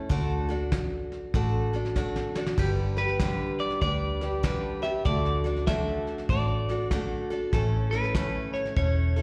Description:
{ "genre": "honky-tonk and classic country", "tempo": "97 BPM", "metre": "4/4", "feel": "swing 64% on 8ths", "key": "G major", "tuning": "A4 = 436 Hz", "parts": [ { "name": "picked steel-string acoustic guitar", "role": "accompaniment", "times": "0.0-9.2 s", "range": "G2 to B4", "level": "-33 LUFS", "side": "equal", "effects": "none" }, { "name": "vintage muted fingered electric bass", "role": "bass", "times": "0.1-9.2 s", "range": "E1 to D2", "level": "-31 LUFS", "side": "equal", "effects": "none" }, { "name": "soft brush drum kit", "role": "drums", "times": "0.1-9.2 s", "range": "crash cymbal, hi-hat, kick drum, snare drum", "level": "-33 LUFS", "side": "equal", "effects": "none" }, { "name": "electric guitar at the edge of break-up", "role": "second line", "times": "2.6-9.2 s", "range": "G4 to E5", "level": "-34 LUFS", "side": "equal", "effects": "tape echo" } ], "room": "light reverb", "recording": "live gig heard through the venue's PA, recital hall reverb", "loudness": "-28 LUFS", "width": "mono", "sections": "0.0-2.6 A section; 2.6-9.2 B section", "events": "drum fill 2.0-2.6; clean electric guitar solo 2.6-9.2", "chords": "0.1 D; 2.6 G; 5.1 D; 7.5 A" }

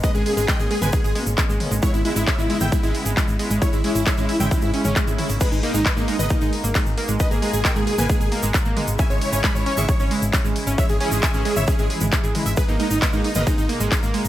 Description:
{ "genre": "uplifting trance", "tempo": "134 BPM", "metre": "4/4", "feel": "straight", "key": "G# minor", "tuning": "A4 = 440 Hz", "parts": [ { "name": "dense compressed supersaw", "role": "melody", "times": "0.0-13.7 s", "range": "D#4 to C#6", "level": "-27 LUFS", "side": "right 1 dB", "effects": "sidechain pumping, digital delay" }, { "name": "plucky unison lead", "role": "second line", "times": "0.0-13.7 s", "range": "D#4 to C#6", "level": "-31 LUFS", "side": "equal", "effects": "sidechain pumping, digital delay" }, { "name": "dark chamber string section", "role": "sustained chords", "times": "0.0-14.3 s", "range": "B2 to E4", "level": "-30 LUFS", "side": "left 2 dB", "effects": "sidechain pumping" }, { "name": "analog pluck", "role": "arpeggios", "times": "0.0-14.2 s", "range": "G#3 to E5", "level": "-27 LUFS", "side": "right 2 dB", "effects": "chorus, sidechain pumping, digital delay" }, { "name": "big-room dance drum kit", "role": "drums", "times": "0.0-14.3 s", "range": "crash cymbal, handclaps, hi-hat, ride cymbal, toms", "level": "-27 LUFS", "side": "left 1 dB", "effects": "overdrive, small room ambience" }, { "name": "electronic kick drum", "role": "drums", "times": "0.0-14.0 s", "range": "none", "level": "-21 LUFS", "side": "equal", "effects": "overdrive, small room ambience" }, { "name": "egg shaker", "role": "percussion", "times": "0.0-14.3 s", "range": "none", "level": "-32 LUFS", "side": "right 1 dB", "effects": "none" }, { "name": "solid FM bass", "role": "bass", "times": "0.1-14.3 s", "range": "G#1 to G#2", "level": "-25 LUFS", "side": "equal", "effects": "sidechain pumping" }, { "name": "swell", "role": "sound effects", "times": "4.7-5.4 s", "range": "none", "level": "-32 LUFS", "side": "equal", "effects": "none" } ], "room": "little or no reverb", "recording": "none", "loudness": "-18 LUFS", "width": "side -13 dB against mid", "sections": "0.0-14.3 A section", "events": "swell 4.7-5.4", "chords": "0.0 G#madd9; 1.8 E6/G#; 5.4 G#madd9; 9.0 C#m/G#; 12.6 G#madd9" }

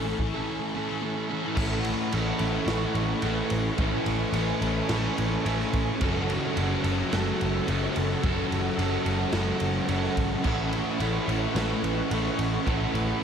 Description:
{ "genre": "rock, shoegaze and dream pop", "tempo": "108 BPM", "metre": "4/4", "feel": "straight", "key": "A major", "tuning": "A4 = 443 Hz", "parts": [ { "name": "phased analog pad", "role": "sustained chords", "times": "0.0-13.2 s", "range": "A4 to E6", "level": "-36 LUFS", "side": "right 1 dB", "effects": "phaser, chorus" }, { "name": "overdriven electric guitar", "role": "riff", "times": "0.0-13.2 s", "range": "F#3 to A4", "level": "-31 LUFS", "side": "right 10 dB", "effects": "reverse reverb" }, { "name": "thick fuzz guitar", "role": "riff", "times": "0.0-13.2 s", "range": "F#2 to A3", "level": "-31 LUFS", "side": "left 9 dB", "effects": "distortion, analog chorus" }, { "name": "vintage muted picked electric bass", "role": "bass", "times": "0.0-13.1 s", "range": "F#1 to A1", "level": "-30 LUFS", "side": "equal", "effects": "none" }, { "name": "raw garage drum kit", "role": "drums", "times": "0.2-13.1 s", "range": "crash cymbal, kick drum, ride cymbal, snare drum", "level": "-32 LUFS", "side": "equal", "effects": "none" }, { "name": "biting overdriven guitar", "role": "riff", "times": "1.6-13.2 s", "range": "F#3 to A4", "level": "-32 LUFS", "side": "equal", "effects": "none" } ], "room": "light reverb, small room ambience", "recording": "none", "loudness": "-24 LUFS", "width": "side -7 dB against mid", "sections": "0.0-1.6 A section; 1.6-13.2 B section", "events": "none", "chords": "0.0 Amaj7; 1.6 A69; 6.0 F#m7; 10.4 A69" }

